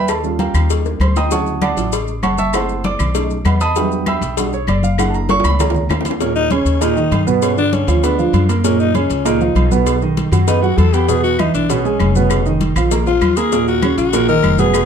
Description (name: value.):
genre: Afro-Cuban jazz.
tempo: 197 BPM.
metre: 4/4.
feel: straight.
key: Eb minor from 6.2 s.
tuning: A4 = 441 Hz.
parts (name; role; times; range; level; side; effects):
warm grand piano; accompaniment; 0.0-14.8 s; Bb2 to E6; -18 LUFS; right 6 dB; none.
upright bass; bass; 0.0-14.9 s; F1 to G2; -18 LUFS; left 1 dB; none.
agogo bells and timbales; percussion; 0.1-14.9 s; none; -28 LUFS; right 7 dB; none.
claves; percussion; 0.1-6.1, 11.4-14.9 s; none; -30 LUFS; left 5 dB; none.
congas; percussion; 0.1-14.9 s; none; -22 LUFS; left 2 dB; none.
cowbell and bongos; percussion; 0.1-14.9 s; none; -24 LUFS; left 10 dB; none.
maracas; percussion; 0.1-14.9 s; none; -30 LUFS; left 8 dB; none.
growling tenor saxophone; second line; 6.2-14.9 s; Db4 to Bb4; -19 LUFS; left 7 dB; none.
room: moderate studio reverb, RT60 0.6 s.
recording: dark, warm production.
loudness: -13 LUFS.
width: side -7 dB against mid.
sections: 0.0-6.2 A section; 6.2-14.9 A section.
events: grand piano solo 0.0-6.2; drum fill 0.9-1.3, 5.0-6.2; tenor saxophone solo 6.2-14.9.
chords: 0.1 D#9; 1.3 Dmaj9; 2.5 F#m7b5; 3.2 B7; 3.8 Em7; 5.0 F#7b13; 6.2 Eb5; 7.4 G7#11; 8.6 Gbmaj7; 9.9 B; 11.1 E6; 12.3 Bmaj9#11/E#; 12.9 Bb5; 13.5 Ebm9.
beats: | 0.09 0.39 0.70 1.01 | 1.31 1.62 1.93 2.23 | 2.54 2.85 3.15 3.46 | 3.76 4.07 4.38 4.68 | 4.99 5.29 5.60 5.90 | 6.21 6.51 6.82 7.12 | 7.43 7.73 8.04 8.34 | 8.65 8.95 9.26 9.56 | 9.87 10.17 10.48 10.78 | 11.09 11.39 11.69 12.00 | 12.30 12.61 12.91 13.22 | 13.52 13.83 14.13 14.44 | 14.74.